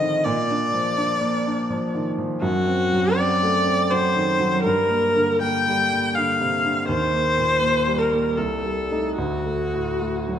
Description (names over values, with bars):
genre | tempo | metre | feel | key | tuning
classical, romantic duo for viola and grand piano | 73-84 BPM | 3/4 | rubato | G minor | A4 = 440 Hz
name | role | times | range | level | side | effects
clear viola | melody | 0.0-10.4 s | F#4 to G5 | -21 LUFS | left 2 dB | none
warm concert grand piano | accompaniment | 0.0-10.4 s | C2 to Eb4 | -23 LUFS | right 2 dB | none
room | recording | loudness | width
wet recital hall reverb, RT60 1.8 s | none | -19 LUFS | side -9 dB against mid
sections
0.0-10.4 A section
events
none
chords
0.3 Bb; 2.4 D7/F#; 4.6 Gm; 6.9 Eb; 8.4 Am7b5/C; 9.2 D